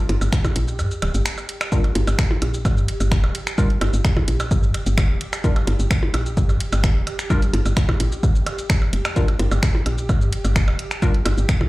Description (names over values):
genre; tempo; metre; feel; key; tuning
minimal techno; 129 BPM; 4/4; straight; G minor; A4 = 442 Hz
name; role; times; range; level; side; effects
swarming drone; texture; 0.0-11.7 s; G4; -35 LUFS; right 2 dB; built-in reverb, sidechain pumping
woody FM bass; bass; 0.1-11.4 s; D1 to G2; -21 LUFS; equal; sidechain pumping
punchy analog drum machine; drums; 0.1-11.6 s; finger snaps, hi-hat, shaker; -28 LUFS; equal; none
percussion blips; percussion; 0.1-11.7 s; none; -29 LUFS; right 2 dB; overdrive, tape echo
electronic kick drum; drums; 0.3-11.7 s; none; -19 LUFS; equal; none
wavetable chord stab; stabs; 1.7-11.1 s; G3 to Bb4; -28 LUFS; left 2 dB; phaser, tape echo
room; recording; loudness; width
little or no reverb; played on a big sound system in a bare room, large studio reverb; -18 LUFS; side -19 dB against mid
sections
0.0-11.7 A section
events
break 0.8-1.7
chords
0.0 Gm